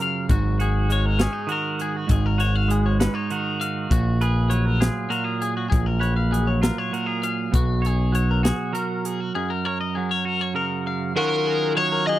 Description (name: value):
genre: math rock and midwest emo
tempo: 66 BPM (dotted quarters)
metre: 6/8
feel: straight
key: F# major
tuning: A4 = 436 Hz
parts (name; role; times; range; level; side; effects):
- clean electric guitar; accompaniment; 0.0-12.2 s; F#2 to C#5; -25 LUFS; right 5 dB; spring reverb
- twangy electric guitar; arpeggios; 0.0-12.2 s; F#4 to E#5; -28 LUFS; left 7 dB; vibrato effect
- crisp fusion drum kit; drums; 0.0-9.2 s; hi-hat, kick drum, snare drum; -23 LUFS; equal; none
- growling fingered electric bass; bass; 0.3-8.5 s; G#1 to B1; -21 LUFS; left 1 dB; overdrive
- biting overdriven guitar; melody; 11.2-12.2 s; A#4 to D#5; -21 LUFS; left 3 dB; none
room: little or no reverb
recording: dry, close 1970s-style studio recording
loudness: -20 LUFS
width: side -14 dB against mid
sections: 0.0-11.2 A section; 11.2-12.2 B section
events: break 9.3-11.2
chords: 0.3 G#7sus4; 3.9 F#maj9/A#; 7.5 Bsus2; 9.3 F#add9; 11.2 D#m9